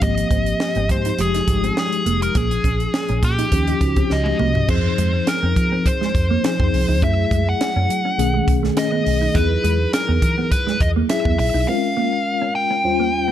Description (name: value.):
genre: polished 1980s jazz-funk pop.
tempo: 103 BPM.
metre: 4/4.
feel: swing 54% on 16ths.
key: unclear.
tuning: A4 = 441 Hz.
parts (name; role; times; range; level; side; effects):
nasal lead guitar with a parked wah; melody; 0.0-13.3 s; G4 to G5; -22 LUFS; left 1 dB; overdrive.
mellow tine electric piano; accompaniment; 0.0-13.3 s; Eb2 to C5; -23 LUFS; left 3 dB; medium stereo tremolo, lush chorus.
mellow electric guitar; riff; 0.0-13.3 s; Ab3 to Eb4; -26 LUFS; right 6 dB; wide subtle chorus.
vintage muted fingered electric bass; bass; 0.0-11.6 s; F1 to Gb3; -21 LUFS; equal; none.
crisp fusion drum kit; drums; 0.0-11.5 s; crash cymbal, hi-hat, kick drum, snare drum, toms; -22 LUFS; right 1 dB; none.
room: studio ambience.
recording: none.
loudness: -16 LUFS.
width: side -11 dB against mid.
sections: 0.0-4.7 A section; 4.7-13.3 B section.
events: drum fill 4.1-4.7.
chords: 0.0 Abmaj13; 1.2 Fm9; 2.4 Bbm7; 3.5 Eb9; 4.7 Fm7; 7.0 Gbm9; 8.2 B13; 9.3 Emaj9; 11.7 Bbm7.